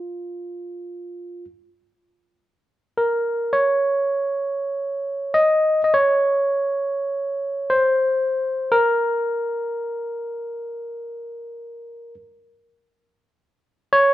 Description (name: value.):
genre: caucasian folk, Caucasian lament.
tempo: free time.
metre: none.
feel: none.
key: Bb minor.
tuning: A4 = 440 Hz.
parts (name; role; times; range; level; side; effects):
barky tine electric piano; solo; 0.0-14.1 s; F4 to Eb5; -20 LUFS; equal; none.
room: moderate recital hall reverb, RT60 1.6 s.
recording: minimal, uncompressed stereo recording.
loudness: -19 LUFS.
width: side -14 dB against mid.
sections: 0.0-14.1 A section.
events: none.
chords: none.